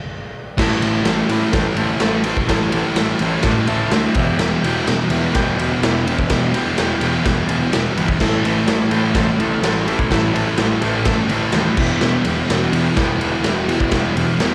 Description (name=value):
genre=garage rock duo or trio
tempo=126 BPM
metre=4/4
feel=straight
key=unclear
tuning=A4 = 441 Hz
part: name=overdriven combo organ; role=sustained chords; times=0.6-14.5 s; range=G4 to A5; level=-30 LUFS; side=equal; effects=none
part: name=thick fuzz guitar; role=riff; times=0.6-14.5 s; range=E2 to A3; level=-21 LUFS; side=equal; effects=distortion, cassette tape
part: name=fuzz picked electric bass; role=bass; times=0.6-14.5 s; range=E1 to A2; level=-27 LUFS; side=equal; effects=overdrive
part: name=raw garage drum kit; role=drums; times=0.6-14.5 s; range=crash cymbal, kick drum, ride cymbal, snare drum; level=-22 LUFS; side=equal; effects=cassette tape
room=light reverb, small room reverb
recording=home recording on cassette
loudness=-18 LUFS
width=mono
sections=0.6-14.5 A section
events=stop 0.0-0.6; transistor combo organ fill 3.4-4.4, 7.2-8.2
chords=0.0 N.C.; 0.6 Am; 4.2 Em; 8.2 Am; 11.8 Em